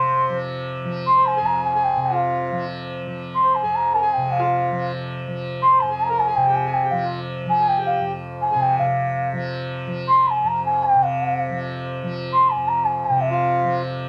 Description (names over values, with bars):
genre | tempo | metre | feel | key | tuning
indian classical, Hindustani | 161 BPM | 3/4 | straight | F raga kafi | A4 = 440 Hz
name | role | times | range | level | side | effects
mellow hollow bansuri | melody | 0.0-13.8 s | F5 to C6 | -20 LUFS | equal | none
hand-pumped harmonium | second line | 0.0-8.9, 13.3-13.8 s | F4 to C5 | -30 LUFS | equal | none
tanpura | drone | 0.0-14.1 s | F2 to F3 | -29 LUFS | equal | none
room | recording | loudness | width
moderate studio ambience, RT60 0.5 s | none | -21 LUFS | mono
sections
0.0-8.8 A section; 8.8-14.1 B section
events
speeding up 0.0-14.1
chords
none